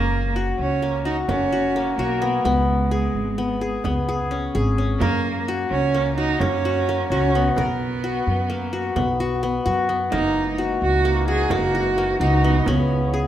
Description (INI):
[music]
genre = contemporary instrumental, chamber music in an uneven meter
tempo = 258 BPM (eighths)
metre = 11/8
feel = straight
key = unclear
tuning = A4 = 440 Hz
[part]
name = rich cello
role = melody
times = 0.0-13.1 s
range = G#3 to G#4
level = -24 LUFS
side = right 4 dB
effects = none
[part]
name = qanun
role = arpeggios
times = 0.0-13.3 s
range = A#3 to A#4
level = -23 LUFS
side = left 4 dB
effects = none
[part]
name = upright bass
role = bass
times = 0.0-13.3 s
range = F#1 to F#2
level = -24 LUFS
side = right 1 dB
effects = none
[part]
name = frame drum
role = percussion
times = 0.1-13.2 s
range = none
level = -30 LUFS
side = right 3 dB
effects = none
[part]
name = dark woodwind section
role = sustained chords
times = 10.1-13.3 s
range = C#3 to D#4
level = -30 LUFS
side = left 1 dB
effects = none
[sound]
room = moderate scoring stage reverb, RT60 1.8 s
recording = none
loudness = -19 LUFS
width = side -11 dB against mid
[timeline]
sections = 0.0-13.3 A section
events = none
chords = 0.0 F#; 2.5 C#5; 5.0 F#; 7.6 B5; 10.1 F#13; 12.7 C#m7